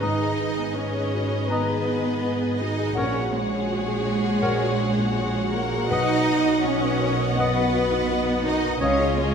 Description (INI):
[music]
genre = cinematic, emotional film score for orchestra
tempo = 82 BPM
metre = 4/4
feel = rubato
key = G# minor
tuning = A4 = 440 Hz
[part]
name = rich studio violin section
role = melody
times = 0.0-9.3 s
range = D#5 to F#5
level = -33 LUFS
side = left 4 dB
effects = none
[part]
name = clear oboe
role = second line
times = 0.0-9.1 s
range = C#5 to D#5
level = -33 LUFS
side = left 1 dB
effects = none
[part]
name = rich studio violin section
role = second line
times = 0.0-9.3 s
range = G#4 to D#5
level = -30 LUFS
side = left 2 dB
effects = none
[part]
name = silver concert flute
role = second line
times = 0.0-9.2 s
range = E#5 to A#5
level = -32 LUFS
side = left 2 dB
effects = none
[part]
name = warm clarinet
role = second line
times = 0.0-9.1 s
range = A#4 to C#5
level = -32 LUFS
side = left 3 dB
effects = none
[part]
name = dark grand piano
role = accompaniment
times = 0.0-9.3 s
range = A#1 to B4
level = -29 LUFS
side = left 4 dB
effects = none
[part]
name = warm studio viola section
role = accompaniment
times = 0.0-9.3 s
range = E#4 to D#5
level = -30 LUFS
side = right 1 dB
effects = none
[part]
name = rich studio cello section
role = bass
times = 0.0-9.3 s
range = G#3 to D#4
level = -26 LUFS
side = right 2 dB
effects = none
[part]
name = rich studio double bass section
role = bass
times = 0.0-9.3 s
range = G#1 to C#2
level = -29 LUFS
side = right 3 dB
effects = none
[sound]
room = moderate scoring stage reverb, RT60 2.0 s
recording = none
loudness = -21 LUFS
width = side -7 dB against mid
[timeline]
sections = 0.0-9.3 A section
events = none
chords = 0.0 G#madd9; 3.0 F#add9/A#; 5.9 B; 8.8 C#add9